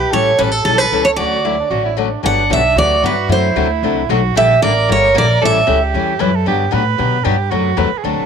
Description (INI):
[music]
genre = acoustic string swing (jazz manouche)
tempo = 227 BPM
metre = 4/4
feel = swing 56% on 8ths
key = D major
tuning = A4 = 440 Hz
[part]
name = picked steel-string acoustic guitar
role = melody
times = 0.0-5.8 s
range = G4 to F#5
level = -14 LUFS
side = right 2 dB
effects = none
[part]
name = breathy soprano saxophone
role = second line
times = 0.0-8.3 s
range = D4 to B4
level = -20 LUFS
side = right 11 dB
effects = none
[part]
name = picked steel-string acoustic guitar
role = accompaniment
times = 0.1-8.2 s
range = C3 to A4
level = -19 LUFS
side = left 15 dB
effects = none
[part]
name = upright bass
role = bass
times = 0.1-8.2 s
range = G1 to B2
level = -19 LUFS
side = equal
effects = none
[sound]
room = light reverb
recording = 1960s-style stereo with parts hard left and right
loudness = -12 LUFS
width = side -7 dB against mid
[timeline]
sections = 0.0-2.2 A section; 2.2-8.3 B section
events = none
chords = 0.1 A7; 1.2 Dmaj7; 2.2 Gmaj7; 3.3 D7; 4.4 Gmadd9; 5.4 A7; 6.5 Gmaj7; 7.5 D7